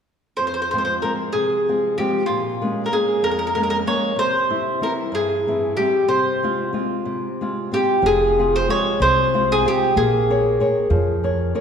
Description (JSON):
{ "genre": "italian folk, Italian serenade", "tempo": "63 BPM (dotted quarters)", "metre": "6/8", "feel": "rubato", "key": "F harmonic minor", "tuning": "A4 = 440 Hz", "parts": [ { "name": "mandolin", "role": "melody", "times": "0.4-11.2 s", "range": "F4 to Db5", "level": "-19 LUFS", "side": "equal", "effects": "none" }, { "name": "flamenco guitar", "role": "accompaniment", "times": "0.4-11.6 s", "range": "F2 to Db5", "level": "-24 LUFS", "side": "left 2 dB", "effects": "none" }, { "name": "upright bass", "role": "bass", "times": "8.0-11.5 s", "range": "F1 to F2", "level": "-23 LUFS", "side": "equal", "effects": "none" } ], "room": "wet scoring stage reverb, RT60 2.0 s", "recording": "recorded in a church or concert hall", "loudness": "-17 LUFS", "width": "side -7 dB against mid", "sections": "0.4-8.0 A section; 8.0-11.6 B section", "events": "none", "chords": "0.4 Fm; 2.3 Bbm7; 4.2 C; 6.1 Fm/C; 8.0 Fm; 10.0 Bbm7", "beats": "| 0.39 1.35 | 2.30 3.24 | 4.19 5.14 | 6.10 7.07 | 8.04 9.01 | 9.96 10.92" }